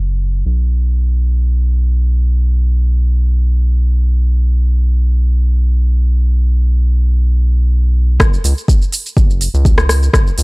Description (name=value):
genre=afro house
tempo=free time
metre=none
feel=none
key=unclear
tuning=A4 = 437 Hz
part: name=round analog bass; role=bass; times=0.0-10.4 s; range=F#1 to C#2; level=-12 LUFS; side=equal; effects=tube saturation, sidechain pumping
part: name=afro-pop drum kit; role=drums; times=8.2-10.4 s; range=hi-hat, rim click, shaker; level=-18 LUFS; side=equal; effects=none
part: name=electronic kick drum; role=drums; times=8.2-10.2 s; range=none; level=-11 LUFS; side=equal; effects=none
room=little or no reverb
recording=dry, gritty hardware recording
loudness=-11 LUFS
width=side -28 dB against mid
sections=0.0-8.2 A section; 8.2-10.4 B section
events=drop 8.2-10.4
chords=none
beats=free time